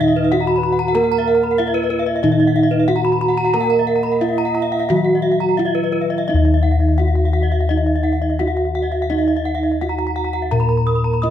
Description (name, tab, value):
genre	Balinese gamelan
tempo	85-95 BPM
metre	4/4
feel	straight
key	Eb pelog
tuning	A4 = 445 Hz
part	gamelan-type bronze metallophone	melody	0.0-11.3 s	Eb4 to Eb5	-19 LUFS	right 2 dB	none
part	mellow bass bansuri	second line	0.0-5.6 s	Bb4-35c to Bb5-31c	-27 LUFS	right 4 dB	none
part	gamelan-type bronze metallophone	accompaniment	0.0-6.3 s	Eb3 to Bb3-30c	-24 LUFS	left 6 dB	none
part	gamelan-type bronze metallophone	arpeggios	0.0-11.2 s	Cb5-20c to Eb6	-25 LUFS	right 2 dB	none
part	gamelan-type bossed gongs	bass	0.0-11.3 s	Eb2 to Bb4-30c	-20 LUFS	left 1 dB	none
part	gamelan-type bronze metallophone	arpeggios	0.1-11.3 s	Cb5-20c to Eb6	-24 LUFS	left 6 dB	slapback echo
room	moderate recital hall reverb, RT60 1.5 s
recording	close, detailed microphones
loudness	-15 LUFS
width	side -10 dB against mid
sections	0.0-6.3 A section; 6.3-11.3 B section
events	none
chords	none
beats	0.32 | 0.95 1.59 2.23 2.88 | 3.54 4.21 4.89 5.58 | 6.28 6.99 7.70 8.40 | 9.11 9.81 10.52 11.23